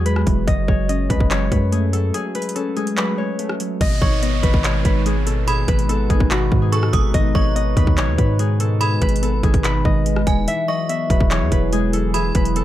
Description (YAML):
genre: hip hop, trap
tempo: 144 BPM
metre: 4/4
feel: half-time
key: G# phrygian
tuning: A4 = 440 Hz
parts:
  - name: concert harp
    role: melody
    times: 0.0-12.6 s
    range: F#4 to E5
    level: -24 LUFS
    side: left 5 dB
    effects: tape echo
  - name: warbly lo-fi synth keys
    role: accompaniment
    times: 0.0-12.6 s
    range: B2 to C#4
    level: -24 LUFS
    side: equal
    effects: chorus
  - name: long sustained 808-style bass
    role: bass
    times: 0.0-12.6 s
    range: E1 to G#2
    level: -20 LUFS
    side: equal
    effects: none
  - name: trap drum kit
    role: drums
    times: 0.1-12.6 s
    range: crash cymbal, handclaps, hi-hat, kick drum, rim click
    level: -20 LUFS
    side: equal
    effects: overdrive
  - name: dark analog pad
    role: sustained chords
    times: 4.7-12.6 s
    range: F#3 to B4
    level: -29 LUFS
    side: right 3 dB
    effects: chorus, phaser
  - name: downlifter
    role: sound effects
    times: 3.8-7.1 s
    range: none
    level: -33 LUFS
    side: right 4 dB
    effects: none
  - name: metallic FM bell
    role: second line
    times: 4.0-12.6 s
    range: G#5 to D#6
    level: -29 LUFS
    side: right 6 dB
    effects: chorus, tape echo
room: little or no reverb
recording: none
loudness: -16 LUFS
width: side -13 dB against mid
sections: 0.0-3.8 A section; 3.8-12.6 B section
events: break 2.1-3.8, 10.5-10.9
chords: 0.5 F#madd9; 3.8 G#m; 10.5 Eadd9